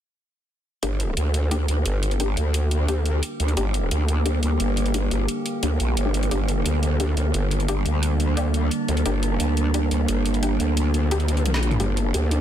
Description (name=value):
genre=dark technical drum and bass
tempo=175 BPM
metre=4/4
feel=straight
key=G minor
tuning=A4 = 444 Hz
part: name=metallic inharmonic drone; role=sustained chords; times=2.0-12.4 s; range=D3 to G4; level=-27 LUFS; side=right 1 dB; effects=chorus, built-in reverb, phaser
part: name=filtered dub chord stab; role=stabs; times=0.8-11.9 s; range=Bb3 to G4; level=-31 LUFS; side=left 4 dB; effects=ensemble chorus, ping-pong delay
part: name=growl bass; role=bass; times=0.8-12.4 s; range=G1 to D2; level=-22 LUFS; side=equal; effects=chorus, tube saturation
part: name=drum and bass drum kit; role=drums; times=0.8-12.4 s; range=hi-hat, snare drum, toms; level=-30 LUFS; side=equal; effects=overdrive, studio reverb
part: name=felt-muted upright piano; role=arpeggios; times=11.8-12.4 s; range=G3 to G4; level=-29 LUFS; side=equal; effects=ping-pong delay
room=digital ambience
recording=dense, heavily limited modern master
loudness=-20 LUFS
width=side -10 dB against mid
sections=0.8-12.4 A section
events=filter sweep on synth stab 0.8-12.4; drum fill 11.5-11.8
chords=0.8 Gm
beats=| 0.83 1.17 1.51 1.86 | 2.20 2.54 2.88 3.23 | 3.57 3.91 4.26 4.60 | 4.94 5.29 5.63 5.97 | 6.31 6.66 7.00 7.34 | 7.68 8.03 8.37 8.71 | 9.06 9.40 9.74 10.09 | 10.43 10.77 11.11 11.46 | 11.80 12.14